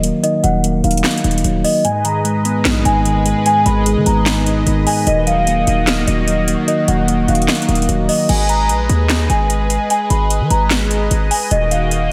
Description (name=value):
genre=hip hop, trap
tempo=149 BPM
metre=4/4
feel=half-time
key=unclear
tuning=A4 = 440 Hz
part: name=celesta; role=melody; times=0.0-12.1 s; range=Eb5 to Cb6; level=-21 LUFS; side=equal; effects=subtle chorus, analog delay
part: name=mellow tine electric piano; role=accompaniment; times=0.0-8.3 s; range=Ab2 to Eb5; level=-20 LUFS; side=equal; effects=none
part: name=hard-hitting 808-style bass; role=bass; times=0.0-12.1 s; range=Eb1 to Eb3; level=-20 LUFS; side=equal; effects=none
part: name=trap drum kit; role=drums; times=0.0-12.0 s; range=crash cymbal, handclaps, hi-hat, snare drum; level=-23 LUFS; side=equal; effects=overdrive
part: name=warm analog pad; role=sustained chords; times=1.8-12.1 s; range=Eb3 to Eb5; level=-24 LUFS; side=equal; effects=chorus
room=moderate lush hall reverb, RT60 2.0 s, digital ambience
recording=dreamy mix soaked in reverb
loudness=-15 LUFS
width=mono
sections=0.0-8.3 A section; 8.3-12.1 A section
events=kick muted 1.8-2.7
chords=0.0 Ebm; 1.8 Abm; 5.1 Ebm; 8.3 Abm; 11.5 Ebm